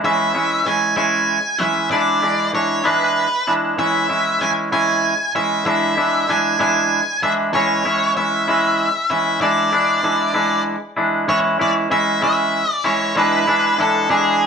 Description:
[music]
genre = rock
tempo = 64 BPM (dotted quarters)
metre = 6/8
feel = straight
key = unclear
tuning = A4 = 440 Hz
[part]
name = octave-fuzz lead guitar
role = melody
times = 0.0-14.5 s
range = G#4 to G#5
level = -19 LUFS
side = equal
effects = distortion
[part]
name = twangy electric guitar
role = riff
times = 0.0-14.5 s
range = E3 to E4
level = -17 LUFS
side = equal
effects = none
[sound]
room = moderate stone room reverb, RT60 0.9 s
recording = band playing live in one room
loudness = -15 LUFS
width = side -6 dB against mid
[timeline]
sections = 0.0-11.3 A section; 11.3-14.5 A section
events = none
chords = 0.0 E6; 1.9 E7; 3.8 E6; 5.7 E7; 7.5 E6; 9.4 E7; 11.3 E6; 13.2 E7

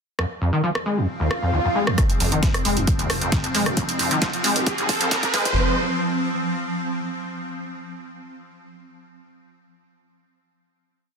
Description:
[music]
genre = driving peak-time techno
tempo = 134 BPM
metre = 4/4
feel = straight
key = F minor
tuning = A4 = 440 Hz
[part]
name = overdriven acid bass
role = riff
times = 0.2-5.5 s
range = Eb2 to Ab3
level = -24 LUFS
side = left 1 dB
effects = lush chorus, sidechain pumping, tape echo
[part]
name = swarming drone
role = drone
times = 1.0-5.6 s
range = F3 to C4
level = -27 LUFS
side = equal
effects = built-in reverb, sidechain pumping
[part]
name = techno drum kit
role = drums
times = 0.2-5.5 s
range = hi-hat, rim click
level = -25 LUFS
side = right 2 dB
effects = soft clipping on snare, high-pass filter on snare, sidechain pumping on hats, high-pass filter on hats, high-pass filter on room
[part]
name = swell and riser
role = sound effects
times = 1.2-5.6 s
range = none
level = -27 LUFS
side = right 1 dB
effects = none
[part]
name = dusty soul sampler-style drum kit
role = drums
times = 2.0-5.4 s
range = hi-hat, snare drum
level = -31 LUFS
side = left 1 dB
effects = high-pass filter on hats, high-pass filter on snare
[part]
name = electronic kick drum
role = drums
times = 2.0-5.5 s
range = none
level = -23 LUFS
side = equal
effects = none
[part]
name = saturated sub bass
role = bass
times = 2.2-5.6 s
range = F1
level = -30 LUFS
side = equal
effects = sidechain pumping, low-pass filter
[sound]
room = moderate stone room reverb, RT60 1.0 s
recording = dense, heavily limited modern master, high-pass filter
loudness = -19 LUFS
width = side -5 dB against mid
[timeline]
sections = 0.2-2.0 intro; 2.0-5.6 build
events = swell 1.2-2.0; build-up 2.0-5.6; riser 2.0-5.6; filter sweep on acid bass 2.0-5.6; filter sweep 2.0-5.6; drum fill 3.8-5.6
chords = 0.2 Fm

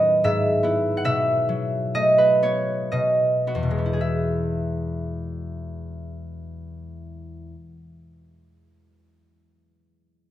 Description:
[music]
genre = classical, solo harp piece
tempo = 52-77 BPM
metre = 3/4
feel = rubato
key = E major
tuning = A4 = 441 Hz
[part]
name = concert harp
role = solo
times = 0.0-8.0 s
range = E2 to F#5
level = -21 LUFS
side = equal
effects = none
[sound]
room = wet recital hall reverb, RT60 1.6 s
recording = none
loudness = -20 LUFS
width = side -13 dB against mid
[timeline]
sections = 0.0-4.0 A section; 4.0-7.1 B section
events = slowing down 0.0-4.0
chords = 0.2 E/G#; 1.0 B7sus4; 2.9 B7; 4.0 E

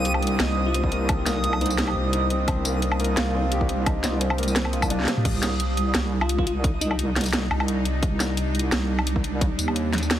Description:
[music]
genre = half-time drum and bass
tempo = 173 BPM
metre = 4/4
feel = swing 54% on 16ths, half-time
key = unclear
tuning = A4 = 440 Hz
[part]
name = bowed-like drone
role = sustained chords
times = 0.0-10.2 s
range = C3 to G4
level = -31 LUFS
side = right 1 dB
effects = built-in reverb, sidechain pumping
[part]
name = felt-muted upright piano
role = arpeggios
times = 0.0-5.3 s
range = Bb3 to C5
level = -30 LUFS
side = left 2 dB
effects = dub echo
[part]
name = deep soft wobble bass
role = bass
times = 0.0-10.2 s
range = C2 to Eb2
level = -25 LUFS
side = equal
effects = chorus
[part]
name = backwards swelling texture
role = texture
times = 0.0-5.3 s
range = Eb6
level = -32 LUFS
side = right 4 dB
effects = built-in reverb
[part]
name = drum and bass drum kit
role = drums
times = 0.1-10.2 s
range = crash cymbal, hi-hat, snare drum, tambourine, toms, woodblock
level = -27 LUFS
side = equal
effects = overdrive
[part]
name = bell-like FM electric piano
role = melody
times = 0.7-1.9, 6.2-7.0 s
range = Eb4 to F4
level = -33 LUFS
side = left 2 dB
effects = chorus, phaser, ping-pong delay
[part]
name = electronic kick drum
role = drums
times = 0.8-9.5 s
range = none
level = -25 LUFS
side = equal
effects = none
[sound]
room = digital ambience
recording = heavily compressed radio sound, multiband compression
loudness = -21 LUFS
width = side -11 dB against mid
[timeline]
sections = 0.0-5.3 A section; 5.3-10.2 A section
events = drop 0.0-5.3, 5.3-10.2; drum fill 4.9-5.3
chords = 0.0 Cm

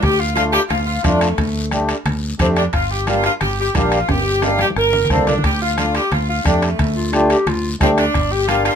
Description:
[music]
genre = latin, cumbia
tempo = 177 BPM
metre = 4/4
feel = straight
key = unclear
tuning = A4 = 440 Hz
[part]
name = warm saxophone section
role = melody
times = 0.0-8.8 s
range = A3 to Bb4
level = -19 LUFS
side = equal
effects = none
[part]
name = fingered electric bass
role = bass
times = 0.0-8.7 s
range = G1 to F2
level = -21 LUFS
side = equal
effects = none
[part]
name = bombo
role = percussion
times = 0.0-8.8 s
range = none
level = -23 LUFS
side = left 1 dB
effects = none
[part]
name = congas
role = percussion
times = 0.0-8.7 s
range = none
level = -27 LUFS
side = left 1 dB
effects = none
[part]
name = guiro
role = percussion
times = 0.0-8.8 s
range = none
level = -30 LUFS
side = left 5 dB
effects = none
[part]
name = timbales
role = percussion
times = 0.0-8.8 s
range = none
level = -28 LUFS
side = right 6 dB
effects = none
[part]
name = mellow accordion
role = accompaniment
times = 0.4-8.7 s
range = A3 to A4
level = -19 LUFS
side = equal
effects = none
[part]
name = mellow clarinet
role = second line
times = 7.0-7.7 s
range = F4 to G4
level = -20 LUFS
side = left 2 dB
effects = none
[sound]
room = moderate studio reverb, RT60 0.5 s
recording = minimal, uncompressed stereo recording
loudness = -15 LUFS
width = side -7 dB against mid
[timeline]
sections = 0.0-8.8 A section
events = drum fill 4.1-5.4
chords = 0.0 Dm; 2.7 Gm; 5.4 Dm; 8.1 Gm

